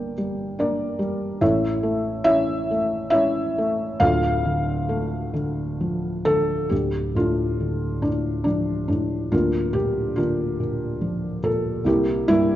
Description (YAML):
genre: classical, lyrical solo piano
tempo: 65-74 BPM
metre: 3/4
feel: rubato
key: D minor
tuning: A4 = 441 Hz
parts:
  - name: felt-muted upright piano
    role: solo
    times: 0.0-12.6 s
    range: D1 to G5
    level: -20 LUFS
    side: equal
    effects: none
room: moderate scoring stage reverb, RT60 1.8 s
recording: dark, warm production, nothing above 7.5 kHz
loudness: -20 LUFS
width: side -13 dB against mid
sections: 0.0-6.7 A section; 6.7-12.6 B section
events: none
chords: 0.0 Gm; 1.4 A; 4.0 Dm; 9.3 Bb/D; 11.9 C7